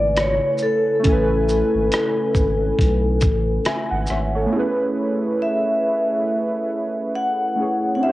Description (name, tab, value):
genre	lo-fi hip hop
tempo	69 BPM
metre	4/4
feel	swing 56% on 16ths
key	A major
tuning	A4 = 441 Hz
part	vibraphone with medium hard mallets	melody	0.0-8.1 s	A4 to F#5	-20 LUFS	left 1 dB	cassette tape, tape echo
part	warbly lo-fi synth keys	accompaniment	0.0-8.1 s	C#3 to G#5	-23 LUFS	right 1 dB	chorus, cassette tape
part	saturated sub bass	bass	0.0-4.5 s	G#1 to B1	-22 LUFS	equal	none
part	lo-fi sampler-style drum kit	drums	0.2-4.3 s	hi-hat, kick drum, rim click, shaker	-22 LUFS	equal	cassette tape
room	light reverb, digital ambience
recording	home recording on cassette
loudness	-18 LUFS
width	side -16 dB against mid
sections	0.0-4.5 A section; 4.5-8.1 B section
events	none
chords	0.0 Amaj9